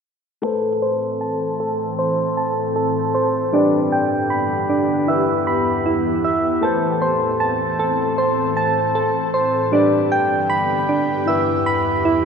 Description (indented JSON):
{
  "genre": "hip hop",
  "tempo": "155 BPM",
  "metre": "4/4",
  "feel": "half-time",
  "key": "A minor",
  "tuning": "A4 = 439 Hz",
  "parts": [
    { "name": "dark concert grand piano", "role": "accompaniment", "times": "0.4-12.2 s", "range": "E3 to D5", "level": "-24 LUFS", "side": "left 6 dB", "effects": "low-pass filter" },
    { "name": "ethereal airy pad", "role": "sustained chords", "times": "0.7-12.2 s", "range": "E2 to A4", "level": "-23 LUFS", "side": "left 2 dB", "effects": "ensemble chorus, built-in reverb, low-pass filter" },
    { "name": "soft electric-piano-like synth keys", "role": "arpeggios", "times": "0.4-12.2 s", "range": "D4 to B5", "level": "-19 LUFS", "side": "right 2 dB", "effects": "chorus, low-pass filter, ping-pong delay" }
  ],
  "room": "wet lush hall reverb, RT60 2.5 s",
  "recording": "rough home demo mix",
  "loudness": "-17 LUFS",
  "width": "side -6 dB against mid",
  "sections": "0.4-12.2 A section",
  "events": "filter sweep 0.4-12.2",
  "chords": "0.4 Amadd9; 3.5 G; 5.1 Em; 6.6 Amadd9; 9.7 G; 11.3 Em"
}